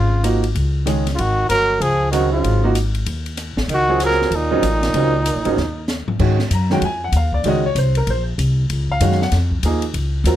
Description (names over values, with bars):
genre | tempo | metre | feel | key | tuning
modal jazz | 192 BPM | 4/4 | swing 63% on 8ths | Ab mixolydian | A4 = 440 Hz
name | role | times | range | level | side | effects
mellow trumpet | melody | 0.0-5.9 s | Eb4 to Bb4 | -19 LUFS | equal | none
breathy tenor saxophone | second line | 0.0-5.9 s | Bb2 to Gb3 | -25 LUFS | right 3 dB | none
upright bass | bass | 0.0-10.4 s | G1 to Ab2 | -19 LUFS | left 1 dB | none
bright upright piano | accompaniment | 0.2-10.4 s | Db3 to Bb5 | -20 LUFS | right 2 dB | none
open jazz drum kit | drums | 0.2-10.3 s | crash cymbal, hi-hat, kick drum, ride cymbal, rim click, snare drum, toms | -27 LUFS | left 1 dB | none
room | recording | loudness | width
light reverb | close, detailed microphones | -16 LUFS | side -12 dB against mid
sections
0.0-6.2 A section; 6.2-10.4 B section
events
drum fill 5.6-6.2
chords
0.0 Ab9sus4; 6.2 Ab13sus4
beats
0.25 0.56 0.87 | 1.18 1.50 1.81 2.12 | 2.44 2.75 3.06 3.37 | 3.69 4.00 4.31 4.62 | 4.94 5.25 5.56 5.88 | 6.19 6.50 6.81 7.13 | 7.44 7.75 8.07 8.38 | 8.69 9.01 9.32 9.63 | 9.94 10.26